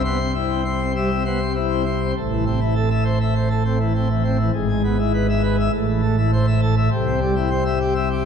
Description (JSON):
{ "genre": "classical, organ toccata", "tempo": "101 BPM", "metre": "4/4", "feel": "straight", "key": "A minor", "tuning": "A4 = 440 Hz", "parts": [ { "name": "pipe organ, plenum", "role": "solo", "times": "0.0-8.3 s", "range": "G#1 to C6", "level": "-18 LUFS", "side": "equal", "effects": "none" } ], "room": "wet church reverb, RT60 3.0 s", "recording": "dark, warm production", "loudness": "-18 LUFS", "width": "side -7 dB against mid", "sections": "0.0-2.2 A section; 2.2-8.3 B section", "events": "none", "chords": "0.0 C; 2.2 Am; 4.5 E/G#; 5.7 Am; 6.9 C", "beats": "0.34 0.95 1.56 | 2.16 2.76 3.35 3.94 | 4.54 5.13 5.73 6.32 | 6.91 7.50 8.10" }